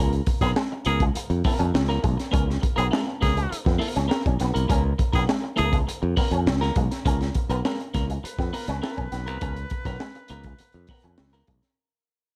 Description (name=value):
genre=funk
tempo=102 BPM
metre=4/4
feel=straight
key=Db mixolydian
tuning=A4 = 440 Hz
part: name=clean electric guitar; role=accompaniment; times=0.0-11.7 s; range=Cb4 to Bb4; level=-34 LUFS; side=equal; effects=spring reverb
part: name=electric guitar with an envelope filter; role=riff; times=0.0-11.6 s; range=Ab3 to Db4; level=-34 LUFS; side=equal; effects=ensemble chorus
part: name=modern bright fingered electric bass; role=bass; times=0.0-11.6 s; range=Cb2 to F2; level=-28 LUFS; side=equal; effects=none
part: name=crunchy breakbeat drum kit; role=drums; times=0.1-11.8 s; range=hi-hat, kick drum, snare drum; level=-28 LUFS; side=equal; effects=none
part: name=breathy tenor saxophone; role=second line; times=0.4-11.4 s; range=Ab4 to Cb5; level=-32 LUFS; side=equal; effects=none
room=little or no reverb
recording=none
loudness=-24 LUFS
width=mono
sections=0.0-7.1 A section; 7.1-11.8 B section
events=fade-out 7.1-11.8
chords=0.0 Db6